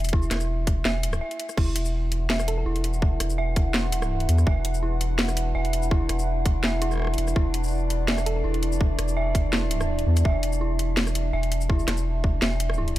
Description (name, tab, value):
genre	half-time drum and bass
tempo	166 BPM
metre	4/4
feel	swing 54% on 16ths, half-time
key	unclear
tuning	A4 = 439 Hz
part	dark detuned synth bell	arpeggios	0.0-13.0 s	E4 to E5	-32 LUFS	right 1 dB	chorus, dub echo
part	saturated sub bass	bass	0.0-13.0 s	E1 to E2	-25 LUFS	equal	none
part	drum and bass drum kit	drums	0.0-13.0 s	crash cymbal, hi-hat, rim click, shaker, snare drum	-28 LUFS	equal	overdrive, studio reverb
part	electronic kick drum	drums	0.1-12.3 s	none	-22 LUFS	equal	overdrive, studio reverb
part	dark analog pad	sustained chords	1.6-13.0 s	E4 to F#5	-34 LUFS	equal	lush chorus, sidechain pumping
part	metallic inharmonic drone	texture	2.1-13.0 s	D4	-36 LUFS	right 1 dB	chorus, built-in reverb
part	thumb-piano-like synth pluck	melody	2.5-2.6, 8.3-8.4 s	A4	-38 LUFS	right 1 dB	chorus, dub echo
room	little or no reverb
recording	none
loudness	-22 LUFS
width	side -15 dB against mid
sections	0.0-13.0 A section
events	break 1.2-1.6; kick drops out 12.8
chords	0.0 E5